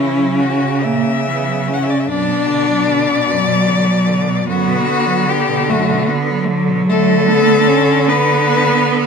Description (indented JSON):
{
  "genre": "classical, lyrical piece for cello ensemble",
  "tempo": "44-51 BPM (dotted quarters)",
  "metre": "6/8",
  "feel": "rubato",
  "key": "B minor",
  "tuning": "A4 = 439 Hz",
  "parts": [
    { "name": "rich cello", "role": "melody", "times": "0.0-9.1 s", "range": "E4 to F#5", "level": "-18 LUFS", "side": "left 7 dB", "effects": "none" },
    { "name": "rich cello", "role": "second line", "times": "0.0-9.1 s", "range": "F#2 to C#4", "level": "-20 LUFS", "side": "right 7 dB", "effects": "none" },
    { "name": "rich cello", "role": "accompaniment", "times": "0.0-9.1 s", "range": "F#3 to D4", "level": "-18 LUFS", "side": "left 2 dB", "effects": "none" },
    { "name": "rich cello", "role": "bass", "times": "0.0-9.1 s", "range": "B2 to D3", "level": "-19 LUFS", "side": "right 3 dB", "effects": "none" }
  ],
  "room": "moderate studio reverb, RT60 0.7 s",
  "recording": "minimal, uncompressed stereo recording",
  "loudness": "-12 LUFS",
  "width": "side -5 dB against mid",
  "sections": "0.0-9.1 A section",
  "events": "none",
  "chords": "0.0 F#7; 2.1 Bm/F#; 6.9 D5",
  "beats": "0.82 | 2.08 3.29 | 4.47 5.67 | 6.87 8.09"
}